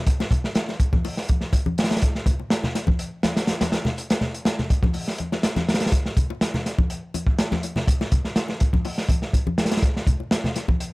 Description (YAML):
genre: breakbeat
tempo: 123 BPM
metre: 4/4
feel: straight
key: none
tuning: none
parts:
  - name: crunchy breakbeat drum kit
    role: drums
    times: 0.1-10.9 s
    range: hi-hat, kick drum, snare drum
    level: -21 LUFS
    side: equal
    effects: none
  - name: bongos and congas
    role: percussion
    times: 0.2-10.8 s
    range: none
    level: -28 LUFS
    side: left 2 dB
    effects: none
room: light reverb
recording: vinyl crackle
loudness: -20 LUFS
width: side -22 dB against mid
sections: 0.0-10.9 A section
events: none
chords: none